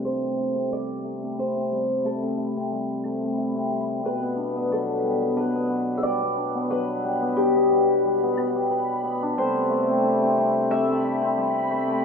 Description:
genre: folktronica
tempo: 90 BPM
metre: 4/4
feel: swing 56% on 16ths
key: A dorian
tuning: A4 = 441 Hz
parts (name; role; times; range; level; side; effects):
- mandolin; melody; 0.0-12.0 s; G4 to E5; -26 LUFS; left 2 dB; none
- pedal harmonium; sustained chords; 0.0-12.0 s; B2 to F#5; -30 LUFS; right 1 dB; low-pass filter
- cimbalom; arpeggios; 0.0-12.0 s; F#3 to B4; -25 LUFS; left 1 dB; low-pass filter
- backwards swelling texture; texture; 0.0-12.0 s; B5; -39 LUFS; right 1 dB; built-in reverb
- claves; drums; 3.0-3.2, 8.4-8.5 s; none; -46 LUFS; left 4 dB; none
room: light reverb, studio ambience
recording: rough home demo mix, low-pass filter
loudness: -22 LUFS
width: side -5 dB against mid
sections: 0.0-12.0 A section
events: filter sweep on hammered dulcimer 0.0-12.0; filter sweep on harmonium 0.0-12.0; filter sweep 0.0-12.0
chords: 0.0 Am7; 4.0 Gmaj7; 9.4 Am7

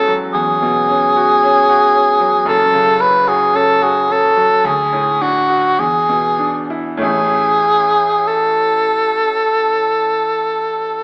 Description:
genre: classical, romantic duo for cor anglais and grand piano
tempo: 46-57 BPM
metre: 4/4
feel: rubato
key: A major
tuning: A4 = 440 Hz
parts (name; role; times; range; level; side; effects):
- mellow cor anglais; melody; 0.0-11.0 s; F#4 to B4; -12 LUFS; equal; none
- bright concert grand piano; accompaniment; 0.0-11.0 s; E1 to F#4; -21 LUFS; equal; none
room: moderate recital hall reverb, RT60 1.4 s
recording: small speaker sound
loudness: -11 LUFS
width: side -34 dB against mid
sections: 0.0-11.0 A section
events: none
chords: 0.0 E69; 2.5 F#5; 4.7 D; 5.8 E7; 7.0 A

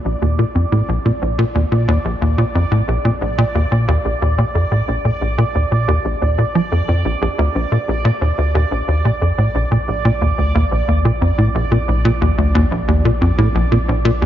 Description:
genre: ambient, sequencer-driven space music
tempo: 90 BPM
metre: 4/4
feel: straight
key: Bb major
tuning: A4 = 440 Hz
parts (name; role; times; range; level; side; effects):
- round analog bass; bass; 0.0-14.3 s; Bb1; -26 LUFS; equal; none
- bubbling stepped-filter texture; texture; 0.0-14.3 s; D5; -24 LUFS; right 3 dB; chorus, built-in reverb
- tight sequencer bass; riff; 0.1-14.3 s; Bb1 to F3; -15 LUFS; equal; analog chorus, analog delay
room: light reverb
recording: nothing above 7.5 kHz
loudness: -14 LUFS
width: side -11 dB against mid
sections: 0.0-14.3 A section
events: fade-in on analog synth bass 0.0-14.3; fade-in on synth texture 0.0-14.3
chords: 0.0 Bb

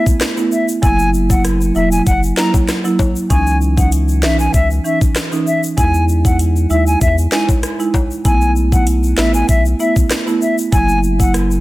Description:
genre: dancehall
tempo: 97 BPM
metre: 4/4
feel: straight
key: unclear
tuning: A4 = 440 Hz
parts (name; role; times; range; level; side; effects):
- silver concert flute; melody; 0.0-11.3 s; E5 to A#5; -20 LUFS; left 2 dB; digital delay
- marimba with medium mallets; accompaniment; 0.0-11.4 s; E3 to E4; -18 LUFS; right 3 dB; sidechain pumping
- island pop drum kit; drums; 0.1-11.5 s; hi-hat, kick drum, rim click, snare drum; -16 LUFS; equal; none
- tube shaker and timbales; percussion; 0.1-11.6 s; none; -28 LUFS; left 5 dB; none
- round analog bass; bass; 0.8-11.6 s; E1 to E2; -16 LUFS; equal; none
room: studio ambience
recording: none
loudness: -12 LUFS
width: side -17 dB against mid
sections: 0.0-11.6 A section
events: none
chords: 0.0 B7sus4; 0.8 F#7; 3.3 C#madd9; 5.8 Emaj7; 8.2 B7sus4; 10.7 F#7

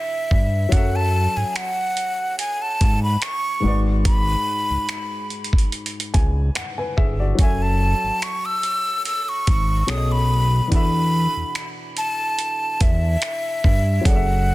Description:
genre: contemporary R&B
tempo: 72 BPM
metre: 4/4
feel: swing 54% on 16ths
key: unclear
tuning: A4 = 440 Hz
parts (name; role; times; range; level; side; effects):
- breathy concert flute; melody; 0.0-14.5 s; E5 to E6; -23 LUFS; equal; digital delay
- dark baby grand piano; accompaniment; 0.0-14.5 s; G#2 to G#5; -28 LUFS; left 3 dB; none
- fat analog bass; bass; 0.3-14.5 s; F#1 to G#2; -20 LUFS; equal; none
- dusty soul sampler-style drum kit; drums; 0.3-14.3 s; finger snaps, hi-hat, kick drum; -20 LUFS; equal; soft clipping on snare
room: little or no reverb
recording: dense, heavily limited modern master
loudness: -18 LUFS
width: side -18 dB against mid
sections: 0.0-14.5 A section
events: grand piano fill 5.7-7.4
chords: 0.0 E7sus4; 0.7 F#m9; 3.6 G#m7b5; 7.4 F#m9; 9.9 B13; 10.7 E7sus4

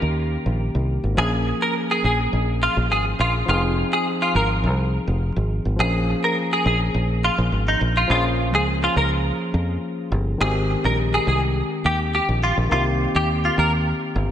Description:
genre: afrobeats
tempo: 104 BPM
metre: 4/4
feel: straight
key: unclear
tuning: A4 = 439 Hz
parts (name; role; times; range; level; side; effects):
- barky tine electric piano; accompaniment; 0.0-14.3 s; Eb3 to Ab4; -26 LUFS; left 1 dB; none
- fingered electric bass; bass; 0.0-14.3 s; F1 to F2; -22 LUFS; equal; none
- direct-recorded clean electric guitar; melody; 1.2-13.7 s; Eb4 to Bb4; -22 LUFS; equal; ensemble chorus, diffuse ambient delay
room: moderate lush hall reverb, RT60 2.8 s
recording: dreamy mix soaked in reverb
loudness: -18 LUFS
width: side -10 dB against mid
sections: 0.0-8.1 A section; 8.1-14.3 B section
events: none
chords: 0.0 Eb7; 1.2 Bbm7; 3.5 Fm7; 5.8 Bbm7; 10.4 Abmaj7; 12.7 Cm7

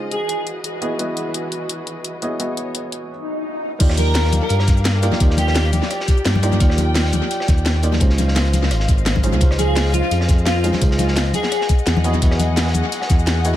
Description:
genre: liquid drum and bass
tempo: 171 BPM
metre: 4/4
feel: swing 54% on 16ths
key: unclear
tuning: A4 = 439 Hz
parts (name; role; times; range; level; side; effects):
- felt-muted upright piano; accompaniment; 0.0-13.6 s; Ab3 to D#5; -26 LUFS; right 2 dB; dub echo
- dark studio string section; sustained chords; 0.0-13.6 s; E3 to G5; -28 LUFS; left 2 dB; sidechain pumping
- airy dreamy lead; melody; 0.1-0.4, 4.0-5.6, 9.6-11.6 s; F4 to Bb4; -25 LUFS; equal; chorus, analog delay
- drum and bass drum kit; drums; 0.1-13.5 s; cabasa, crash cymbal, hi-hat, rim click, snare drum; -24 LUFS; left 1 dB; tape echo
- swell; sound effects; 3.2-3.8 s; none; -26 LUFS; left 2 dB; none
- smooth synth bass; bass; 3.8-13.6 s; Ab1 to G2; -18 LUFS; equal; none
- crunchy breakbeat drum kit; drums; 3.8-13.6 s; hi-hat, snare drum; -29 LUFS; equal; high-pass filter on hats, high-pass filter on snare, high-pass filter on room, tape echo
- electronic kick drum; drums; 3.8-13.2 s; none; -16 LUFS; equal; none
- congas; percussion; 4.0-12.8 s; none; -26 LUFS; left 4 dB; none
room: light reverb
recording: echo-heavy mix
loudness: -16 LUFS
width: side -12 dB against mid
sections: 0.0-3.8 A section; 3.8-13.6 B section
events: swell 3.2-3.8; drop 3.8-13.6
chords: 0.1 Emaj9; 3.8 Ebmaj9; 8.0 Dbmaj9; 11.3 Emaj9

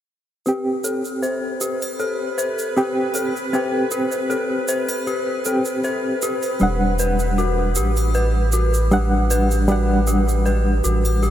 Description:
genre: trip hop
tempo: 78 BPM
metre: 4/4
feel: swing 54% on 16ths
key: A dorian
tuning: A4 = 440 Hz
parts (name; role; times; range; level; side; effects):
- reed electric piano; accompaniment; 0.5-11.3 s; G3 to F#5; -22 LUFS; equal; overdrive, fast tremolo, tape echo
- dark detuned synth bell; arpeggios; 0.5-11.3 s; F#4 to C5; -24 LUFS; left 2 dB; chorus, low-pass filter, tape echo
- egg shaker and triangle; percussion; 0.5-11.3 s; none; -31 LUFS; right 4 dB; none
- bowed-like drone; texture; 1.5-11.3 s; B4; -31 LUFS; right 2 dB; built-in reverb
- round analog bass; bass; 6.6-11.3 s; E1 to A1; -19 LUFS; equal; none
- swell; sound effects; 11.3 s; none; barely audible; none; none
room: moderate huge ambient reverb, RT60 5.3 s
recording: dreamy mix soaked in reverb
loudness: -18 LUFS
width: side -11 dB against mid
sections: 0.5-11.3 A section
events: filter sweep on synth bell 0.5-11.3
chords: 0.5 Am7; 6.6 Em9

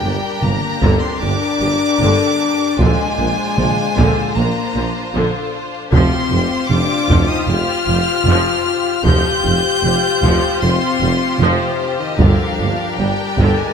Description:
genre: cinematic, epic orchestral film score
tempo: 76 BPM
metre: 4/4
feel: straight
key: F dorian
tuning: A4 = 440 Hz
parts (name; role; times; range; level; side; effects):
- clear chamber violin section; melody; 0.0-13.7 s; C5 to G6; -21 LUFS; left 2 dB; none
- clear symphonic violin section; second line; 0.0-13.7 s; F4 to C5; -26 LUFS; left 2 dB; none
- rich symphonic viola section; accompaniment; 0.0-13.7 s; D3 to F4; -22 LUFS; equal; none
- mellow French horn section; sustained chords; 0.0-13.7 s; C3 to G4; -21 LUFS; left 8 dB; none
- rich symphonic double bass section; bass; 0.0-13.5 s; F1 to Bb1; -22 LUFS; right 3 dB; none
- warm studio cello section; bass; 0.0-13.5 s; F2 to Bb2; -22 LUFS; right 2 dB; none
- warm tuba; bass; 0.0-13.5 s; F1 to Bb1; -24 LUFS; right 5 dB; none
- solo taiko drums; drums; 0.4-13.7 s; none; -18 LUFS; equal; none
room: moderate scoring stage reverb, RT60 2.0 s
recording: none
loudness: -13 LUFS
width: side -7 dB against mid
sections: 0.0-13.7 A section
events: none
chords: 0.0 Gm; 2.8 Bbadd9; 5.9 Fsus2; 12.2 Gm

